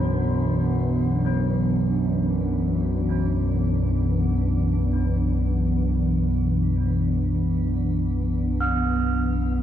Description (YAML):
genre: dark ambient drone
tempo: free time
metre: none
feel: none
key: unclear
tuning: A4 = 440 Hz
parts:
  - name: sweeping resonant pad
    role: sustained chords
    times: 0.0-9.6 s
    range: E3 to D4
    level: -25 LUFS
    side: right 1 dB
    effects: chorus
  - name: gamelan-type bronze metallophone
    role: arpeggios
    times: 0.0-9.6 s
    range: F#3 to B3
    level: -32 LUFS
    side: right 3 dB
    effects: ping-pong delay, shimmer reverb
  - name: analog drone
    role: drone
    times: 0.0-9.6 s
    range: B1 to F#2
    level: -23 LUFS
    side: left 1 dB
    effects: chorus
room: wet cathedral reverb, RT60 6.0 s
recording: dark, warm production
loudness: -21 LUFS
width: side -10 dB against mid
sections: 0.0-9.6 A section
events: none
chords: 0.0 Bm